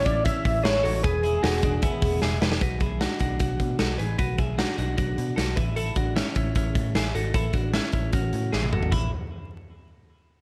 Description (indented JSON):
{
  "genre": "jangly indie pop",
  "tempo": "152 BPM",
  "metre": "4/4",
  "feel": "straight",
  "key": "A major",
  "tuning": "A4 = 443 Hz",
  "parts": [
    { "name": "warm velvety synth lead", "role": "melody", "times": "0.0-2.2 s", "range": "G#4 to E5", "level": "-28 LUFS", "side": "equal", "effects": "chorus, tape echo" },
    { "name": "twelve-string electric guitar", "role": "arpeggios", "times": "0.0-9.1 s", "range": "B3 to B4", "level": "-33 LUFS", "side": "equal", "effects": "none" },
    { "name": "vintage muted picked electric bass", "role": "bass", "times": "0.0-9.1 s", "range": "E1 to B2", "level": "-30 LUFS", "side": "equal", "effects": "none" },
    { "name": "big rock drum kit", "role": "drums", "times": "0.1-9.0 s", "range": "hi-hat, kick drum, snare drum, splash cymbal, toms", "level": "-29 LUFS", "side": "equal", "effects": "none" }
  ],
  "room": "small room ambience",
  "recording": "vinyl crackle",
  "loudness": "-25 LUFS",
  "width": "mono",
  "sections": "0.0-2.6 A section; 2.6-8.9 B section; 8.9-10.4 C section",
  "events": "drum fill 2.2-2.6, 8.5-8.9",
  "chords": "0.0 A; 1.0 E; 2.6 Bm; 5.6 A; 8.9 A5"
}